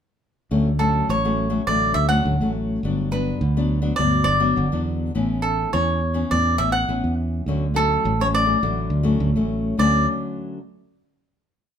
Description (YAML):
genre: samba and choro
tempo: 104 BPM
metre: 4/4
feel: straight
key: D major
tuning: A4 = 442 Hz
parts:
  - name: nylon-string guitar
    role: accompaniment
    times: 0.5-10.6 s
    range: G2 to D4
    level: -24 LUFS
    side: left 4 dB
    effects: none
  - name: fingered electric bass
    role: bass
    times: 0.5-10.1 s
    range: G1 to E2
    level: -22 LUFS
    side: right 1 dB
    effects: none
  - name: cavaquinho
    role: melody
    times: 0.8-10.1 s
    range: A4 to F#5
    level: -22 LUFS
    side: right 1 dB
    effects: none
room: light reverb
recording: minimal, uncompressed stereo recording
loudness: -18 LUFS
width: side -8 dB against mid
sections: 0.5-9.8 A section; 9.8-11.8 final chord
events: none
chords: 0.5 Dmaj7; 2.8 Gmaj7; 5.2 Aadd9; 7.5 Dmaj7